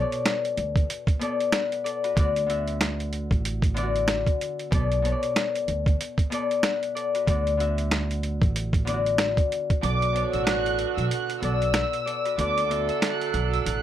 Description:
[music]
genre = hip hop, boom-bap hip-hop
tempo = 94 BPM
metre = 4/4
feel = swing 59% on 16ths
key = B minor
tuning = A4 = 438 Hz
[part]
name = Celtic harp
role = accompaniment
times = 0.0-13.8 s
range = B2 to F#5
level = -27 LUFS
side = left 5 dB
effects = high-pass filter, low-pass filter
[part]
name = boom bap sampler-style drum kit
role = drums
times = 0.1-13.8 s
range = hi-hat, kick drum, snare drum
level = -25 LUFS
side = right 1 dB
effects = none
[part]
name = upright bass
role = bass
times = 0.6-13.8 s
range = A1 to D2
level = -28 LUFS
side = right 1 dB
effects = none
[part]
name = warm studio violin section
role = melody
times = 9.8-13.8 s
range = D6 to F#6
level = -30 LUFS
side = right 4 dB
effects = high-pass filter, low-pass filter
[part]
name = warm saxophone section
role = stabs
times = 9.8-13.8 s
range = D3 to A4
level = -30 LUFS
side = right 14 dB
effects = high-pass filter, low-pass filter, ping-pong delay
[sound]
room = moderate small room reverb, RT60 0.5 s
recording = none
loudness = -22 LUFS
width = side -11 dB against mid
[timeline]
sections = 0.0-9.8 A section; 9.8-13.8 B section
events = kick muted 9.8-13.8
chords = 0.0 Bm7; 2.2 D6; 4.7 Bm7; 7.3 D6; 9.8 Bm7; 12.4 D6

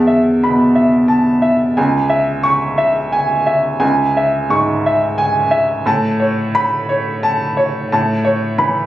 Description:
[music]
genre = neoclassical minimalist piano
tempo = 59 BPM (dotted quarters)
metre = 6/8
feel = rubato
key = unclear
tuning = A4 = 440 Hz
[part]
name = warm baby grand piano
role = solo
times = 0.0-8.9 s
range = C#2 to C#6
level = -13 LUFS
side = equal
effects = none
[sound]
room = light reverb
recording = recorded on a phone in the room, club reverb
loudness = -13 LUFS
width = side -14 dB against mid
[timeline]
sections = 0.0-8.9 A section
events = none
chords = 0.0 Esus4; 1.8 C#m; 5.9 Aadd9

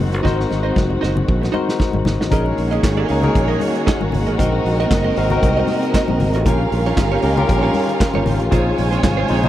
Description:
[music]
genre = disco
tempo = 116 BPM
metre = 4/4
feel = swing 56% on 16ths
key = unclear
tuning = A4 = 439 Hz
[part]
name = barky tine electric piano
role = accompaniment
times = 0.0-9.5 s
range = Cb4 to C5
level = -22 LUFS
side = left 6 dB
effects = none
[part]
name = direct-recorded clean electric guitar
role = accompaniment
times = 0.0-9.5 s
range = Bb3 to F5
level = -26 LUFS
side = right 7 dB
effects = lush chorus
[part]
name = dark studio string section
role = sustained chords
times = 0.0-9.5 s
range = C3 to Gb4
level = -24 LUFS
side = equal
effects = none
[part]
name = modern bright fingered electric bass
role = bass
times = 0.0-9.5 s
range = F1 to Db2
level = -20 LUFS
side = equal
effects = none
[part]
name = vintage drum kit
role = drums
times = 0.0-9.5 s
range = handclaps, hi-hat, kick drum, snare drum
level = -21 LUFS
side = equal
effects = none
[part]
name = congas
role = percussion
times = 0.3-9.5 s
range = none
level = -26 LUFS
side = left 4 dB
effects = none
[part]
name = warm studio violin section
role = second line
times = 2.3-9.5 s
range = Bb3 to Ab5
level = -22 LUFS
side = right 4 dB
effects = none
[sound]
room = light reverb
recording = none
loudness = -15 LUFS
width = side -13 dB against mid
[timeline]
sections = 0.0-2.3 A section; 2.3-9.5 B section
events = drum fill 0.2-2.3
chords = 0.0 Ab7; 2.3 Gb69; 4.4 Ab9; 6.5 Eb9; 8.5 Dbmaj7

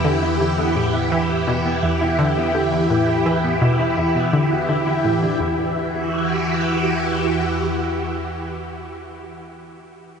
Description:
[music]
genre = ambient, sequencer-driven space music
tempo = 84 BPM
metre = 4/4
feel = straight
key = E minor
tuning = A4 = 441 Hz
[part]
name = phased string machine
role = sustained chords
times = 0.0-9.0 s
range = E3 to F#5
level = -20 LUFS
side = right 1 dB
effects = ensemble chorus, phaser
[part]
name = mellow electric guitar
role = arpeggios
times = 0.0-5.7 s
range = B3 to B4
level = -26 LUFS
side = left 1 dB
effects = auto-pan, tape echo
[part]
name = analog pluck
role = riff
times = 0.0-5.7 s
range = E2 to E3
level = -22 LUFS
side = left 1 dB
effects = chorus, tape echo
[part]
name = analog drone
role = bass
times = 0.0-7.5 s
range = E2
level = -31 LUFS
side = equal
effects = chorus
[sound]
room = wet huge ambient reverb, RT60 7.3 s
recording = dreamy mix soaked in reverb, nothing above 10.6 kHz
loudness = -17 LUFS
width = side -6 dB against mid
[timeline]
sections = 0.0-5.4 A section; 5.4-8.3 B section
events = filter sweep on synth arpeggio sound 0.0-5.4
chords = 0.0 Emadd9

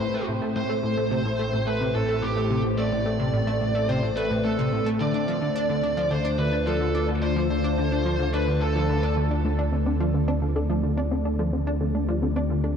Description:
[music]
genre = ambient, sequencer-driven space music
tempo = 108 BPM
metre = 4/4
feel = straight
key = unclear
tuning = A4 = 440 Hz
[part]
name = high-gain lead guitar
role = melody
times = 0.0-9.1 s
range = G4 to D5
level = -28 LUFS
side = equal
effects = distortion, shimmer reverb, analog delay
[part]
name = phased analog pad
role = sustained chords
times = 0.0-12.8 s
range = A2 to A5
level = -28 LUFS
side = left 2 dB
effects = phaser, chorus
[part]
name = plucky analog bass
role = riff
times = 0.0-12.8 s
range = A2 to D4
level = -28 LUFS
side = equal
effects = lush chorus, analog delay
[part]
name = analog drone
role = bass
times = 0.0-12.8 s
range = A1 to D2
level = -28 LUFS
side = right 1 dB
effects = chorus
[part]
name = soft round pluck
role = arpeggios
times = 9.4-12.7 s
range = A3 to A4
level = -31 LUFS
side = equal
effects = chorus, auto-pan, shimmer reverb, analog delay
[sound]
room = wet cathedral reverb, RT60 5.7 s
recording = in a vast, echoing space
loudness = -22 LUFS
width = side -7 dB against mid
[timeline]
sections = 0.0-12.8 A section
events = none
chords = 0.0 Am7; 5.0 Dm

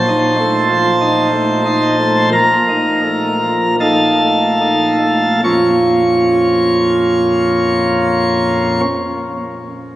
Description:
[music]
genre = classical, chorale-style piece for pipe organ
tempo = 36-50 BPM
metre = 4/4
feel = rubato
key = Bb minor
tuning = A4 = 440 Hz
[part]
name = chamber organ, principal chorus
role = solo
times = 0.0-8.8 s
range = Bb1 to Db6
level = -12 LUFS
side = equal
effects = none
[sound]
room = wet cathedral reverb, RT60 4.2 s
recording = recorded on a phone in the room, club reverb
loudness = -11 LUFS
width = side -14 dB against mid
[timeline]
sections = 0.0-5.4 A section; 5.4-10.0 B section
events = slowing down 0.0-5.4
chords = 0.0 F7/Bb; 5.4 Bbm

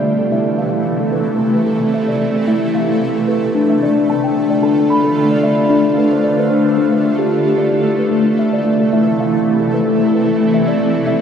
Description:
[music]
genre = world meditative, meditative tuned percussion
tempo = 112 BPM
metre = 4/4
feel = straight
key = A minor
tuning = A4 = 440 Hz
[part]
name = shimmering ambient pad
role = sustained chords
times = 0.0-11.2 s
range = C3 to F4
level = -17 LUFS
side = right 1 dB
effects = chorus, built-in reverb, phaser
[part]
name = steel tongue drum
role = arpeggios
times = 0.0-11.2 s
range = A3 to B5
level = -15 LUFS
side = left 1 dB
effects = tape echo
[sound]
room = wet huge ambient reverb, RT60 8.3 s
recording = dreamy mix soaked in reverb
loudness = -13 LUFS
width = side -8 dB against mid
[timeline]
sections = 0.0-11.2 A section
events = steel tongue drum fill 6.0-7.9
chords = 0.0 Am; 3.5 Dm; 7.9 Am

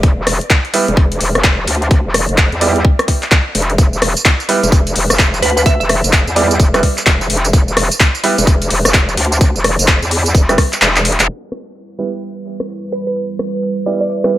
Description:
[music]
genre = bass house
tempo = 128 BPM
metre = 4/4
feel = swing 62% on 16ths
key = E phrygian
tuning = A4 = 443 Hz
[part]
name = metallic wobble bass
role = bass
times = 0.0-11.3 s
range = E1 to E2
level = -16 LUFS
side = equal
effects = chorus, overdrive, sidechain pumping
[part]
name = big-room dance drum kit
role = drums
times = 0.0-14.3 s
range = handclaps, hi-hat, rim click, tambourine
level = -15 LUFS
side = equal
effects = none
[part]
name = dusty soul sampler-style drum kit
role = drums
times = 0.0-14.4 s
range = hi-hat, snare drum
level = -26 LUFS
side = equal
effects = none
[part]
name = electronic kick drum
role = drums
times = 0.0-10.7 s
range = none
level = -11 LUFS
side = equal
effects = none
[part]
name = bright concert grand piano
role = stabs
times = 0.7-14.3 s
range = G3 to D5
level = -18 LUFS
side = right 3 dB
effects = sidechain pumping, low-pass filter, tape echo
[part]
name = glassy wavetable pluck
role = melody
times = 5.4-5.9, 12.9-14.2 s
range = B4 to E5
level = -20 LUFS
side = right 2 dB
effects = chorus, tape echo
[part]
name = dark analog pad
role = sustained chords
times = 12.2-14.4 s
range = G3 to B4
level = -22 LUFS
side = right 3 dB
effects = chorus, phaser, sidechain pumping
[sound]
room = light reverb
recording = low-pass filter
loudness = -11 LUFS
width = side -14 dB against mid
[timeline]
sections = 0.0-11.3 A section; 11.3-14.4 B section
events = kick drops out 10.8-11.3; drum fill 10.9-11.3; band accent 11.2; filter sweep 11.3-14.4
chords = 0.0 N.C.; 11.3 Em

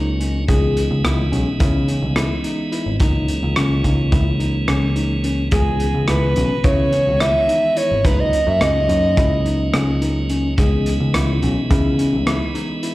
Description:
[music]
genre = progressive instrumental, band music in an uneven meter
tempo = 214 BPM (eighths)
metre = 9/8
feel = straight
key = C# dorian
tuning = A4 = 438 Hz
[part]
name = tonewheel organ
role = accompaniment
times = 0.0-12.9 s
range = D#3 to D#4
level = -25 LUFS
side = right 2 dB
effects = stopped rotary speaker, slapback echo
[part]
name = bright tine electric piano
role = arpeggios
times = 0.0-12.9 s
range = C#4 to G#4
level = -25 LUFS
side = left 2 dB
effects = slapback echo, analog delay
[part]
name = picked electric bass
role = bass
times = 0.0-12.4 s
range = G#1 to C#3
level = -19 LUFS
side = equal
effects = none
[part]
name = crunchy breakbeat drum kit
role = drums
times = 0.2-12.9 s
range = hi-hat, kick drum, rim click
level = -21 LUFS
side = equal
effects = none
[part]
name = mellow soprano saxophone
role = melody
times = 5.5-9.7 s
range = G#4 to E5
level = -19 LUFS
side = right 1 dB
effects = none
[sound]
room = light reverb, small room ambience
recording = live gig heard through the venue's PA, club reverb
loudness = -15 LUFS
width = side -18 dB against mid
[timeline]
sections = 0.0-12.9 A section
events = none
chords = 0.5 C#m7; 3.0 C#m69; 5.5 C#m7; 8.0 C#sus4; 10.6 C#m7

